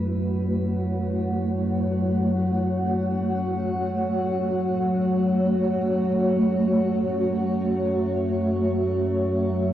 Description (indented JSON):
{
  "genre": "dark ambient drone",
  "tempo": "free time",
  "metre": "none",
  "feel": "none",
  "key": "F# minor",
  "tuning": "A4 = 441 Hz",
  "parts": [
    { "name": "granular cloud pad", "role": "sustained chords", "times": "0.0-9.7 s", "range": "A3 to F#5", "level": "-24 LUFS", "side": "equal", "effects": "built-in reverb, shimmer reverb" },
    { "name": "analog drone", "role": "drone", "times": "0.0-9.7 s", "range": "F#2 to F#3", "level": "-25 LUFS", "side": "equal", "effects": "chorus" }
  ],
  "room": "wet huge ambient reverb, RT60 7.8 s",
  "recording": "worn, warbling old tape, cassette tape, warbly pitch drift",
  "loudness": "-21 LUFS",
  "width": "side -12 dB against mid",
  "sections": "0.0-9.7 A section",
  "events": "none",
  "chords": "0.0 F#m"
}